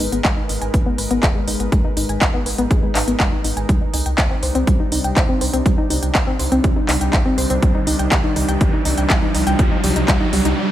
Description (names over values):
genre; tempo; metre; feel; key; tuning
melodic techno; 122 BPM; 4/4; straight; unclear; A4 = 439 Hz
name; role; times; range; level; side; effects
evolving wavetable pad; sustained chords; 0.0-10.7 s; C3 to B4; -26 LUFS; left 1 dB; chorus, built-in reverb, sidechain pumping
woody wave-folded pluck; arpeggios; 0.0-10.5 s; G3 to G#5; -22 LUFS; left 1 dB; chorus, sidechain pumping, tape echo
dark detuned saw bass; bass; 0.0-10.5 s; F#1 to C2; -23 LUFS; equal; sidechain pumping
techno drum kit; drums; 0.0-10.6 s; handclaps, hi-hat; -22 LUFS; equal; overdrive, sidechain pumping on hats, high-pass filter on hats, studio reverb, high-pass filter on snare
electronic kick drum; drums; 0.2-10.2 s; none; -18 LUFS; equal; overdrive, studio reverb
riser; sound effects; 6.6-10.7 s; none; -26 LUFS; right 1 dB; none
room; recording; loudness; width
light reverb, digital ambience; none; -15 LUFS; side -12 dB against mid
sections
0.0-10.7 A section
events
build-up 0.0-10.7; filter sweep on synth pluck 0.0-10.7; riser 6.6-10.7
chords
0.0 G#m; 3.7 Cm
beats
0.25 0.74 1.23 | 1.72 2.22 2.71 3.20 | 3.69 4.18 4.67 5.17 | 5.66 6.15 6.64 7.13 | 7.62 8.12 8.61 9.10 | 9.59 10.08 10.58